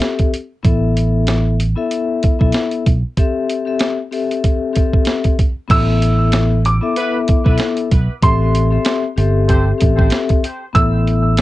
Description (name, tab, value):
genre	hip hop, boom-bap hip-hop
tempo	95 BPM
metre	4/4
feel	swing 57% on 16ths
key	A minor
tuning	A4 = 439 Hz
part	vibraphone with medium mallets	accompaniment	0.0-11.4 s	B3 to E5	-19 LUFS	left 5 dB	high-pass filter, low-pass filter, cassette tape
part	boom bap sampler-style drum kit	drums	0.0-11.4 s	crash cymbal, hi-hat, kick drum, snare drum	-16 LUFS	right 1 dB	cassette tape
part	fingered electric bass	bass	0.6-11.4 s	G1 to B1	-15 LUFS	right 1 dB	none
part	warm upright piano	melody	5.7-11.4 s	C6 to E6	-21 LUFS	right 2 dB	high-pass filter, low-pass filter, cassette tape, tape echo
part	finger snap	percussion	6.3-11.4 s	none	-33 LUFS	right 11 dB	none
part	dark horn section	stabs	7.0-9.7 s	B3 to C5	-26 LUFS	right 1 dB	high-pass filter, low-pass filter, cassette tape, tape echo
room	little or no reverb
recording	home recording on cassette, nothing above 10.7 kHz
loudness	-13 LUFS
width	side -16 dB against mid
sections	0.0-5.7 A section; 5.7-11.4 B section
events	none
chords	0.0 Am7; 0.6 Esus4/A; 3.2 Am7; 5.7 Esus4/A; 8.2 Am7; 10.8 Esus4/A